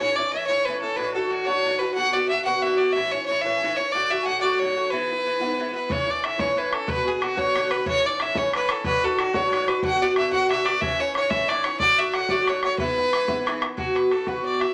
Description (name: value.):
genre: celtic folk, Celtic jig.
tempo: 122 BPM (dotted quarters).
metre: 6/8.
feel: straight.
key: E mixolydian.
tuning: A4 = 445 Hz.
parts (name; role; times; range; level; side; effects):
clear fiddle; melody; 0.0-14.7 s; F#4 to G#5; -25 LUFS; equal; none.
Irish bouzouki; accompaniment; 0.0-14.7 s; G#2 to F#4; -28 LUFS; equal; none.
bodhran; percussion; 5.9-14.7 s; none; -31 LUFS; equal; none.
room: wet studio reverb, RT60 0.6 s.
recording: none.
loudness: -23 LUFS.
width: mono.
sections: 0.0-5.9 A section; 5.9-13.8 A section.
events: none.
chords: 0.0 A; 1.0 Dadd9; 2.0 Bm; 2.9 A; 3.9 D; 4.9 E; 5.9 A; 6.9 Bm; 7.9 A; 8.8 Dadd9; 9.8 Bm; 10.8 A; 11.8 D; 12.8 E; 13.8 Esus2.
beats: 0.48 | 0.98 1.47 | 1.96 2.46 | 2.95 3.44 | 3.93 4.42 | 4.92 5.41 | 5.90 6.39 | 6.88 7.37 | 7.86 8.36 | 8.85 9.34 | 9.83 10.32 | 10.82 11.31 | 11.80 12.29 | 12.79 13.28 | 13.78 14.27.